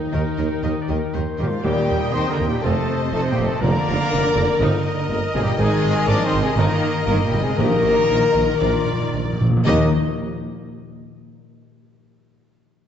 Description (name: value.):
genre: cinematic, heroic adventure film score.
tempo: 112-122 BPM.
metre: 4/4.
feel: straight.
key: Eb major.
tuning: A4 = 441 Hz.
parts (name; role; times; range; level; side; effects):
dark clarinet; second line; 0.0-9.9 s; Eb4 to C5; -32 LUFS; left 1 dB; none.
mellow large flute ensemble; second line; 0.0-10.0 s; Eb4 to D6; -32 LUFS; left 2 dB; none.
rich symphonic violin section; second line; 0.0-10.0 s; Eb4 to D6; -34 LUFS; equal; none.
dark French horn section; sustained chords; 0.0-9.9 s; Eb3 to Eb4; -24 LUFS; left 4 dB; none.
concert harp; arpeggios; 0.0-11.8 s; F2 to C6; -30 LUFS; left 7 dB; none.
warm symphonic violin section; melody; 0.1-10.0 s; D5 to G5; -32 LUFS; left 4 dB; none.
clear oboe; second line; 0.1-9.9 s; Bb4 to Eb5; -35 LUFS; right 2 dB; none.
warm symphonic viola section; accompaniment; 0.1-10.0 s; G3 to Eb5; -32 LUFS; equal; none.
dark symphonic cello section; bass; 0.1-10.0 s; Ab2 to F3; -25 LUFS; right 2 dB; none.
rich symphonic double bass section; bass; 0.1-10.0 s; F1 to Eb2; -25 LUFS; right 2 dB; none.
warm tuba; bass; 0.1-9.9 s; F1 to Eb2; -27 LUFS; right 2 dB; none.
bright trumpet section; stabs; 1.4-9.9 s; F4 to Eb5; -29 LUFS; right 1 dB; none.
timpani; percussion; 1.6-2.4, 7.6-9.9 s; Bb2 to Eb3; -23 LUFS; equal; none.
room: wet scoring stage reverb, RT60 1.9 s.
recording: dark, warm production, nothing above 8.0 kHz.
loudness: -17 LUFS.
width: side -9 dB against mid.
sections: 0.0-1.6 A section; 1.6-9.7 B section; 9.7-11.8 C section.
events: slowing down 4.6-9.7; timpani fill 8.6-9.7.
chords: 0.0 Eb; 2.6 F7; 3.6 Bb/F; 4.6 Eb/G; 5.6 Absus2; 6.6 Eb/G; 7.6 Eb/Bb; 8.6 Bb; 9.7 Eb.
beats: 0.13 0.63 1.14 | 1.64 2.14 2.64 3.13 | 3.62 4.12 4.61 5.10 | 5.59 6.08 6.57 7.07 | 7.58 8.09 8.60 9.13 | 9.66 10.19 10.71 11.24.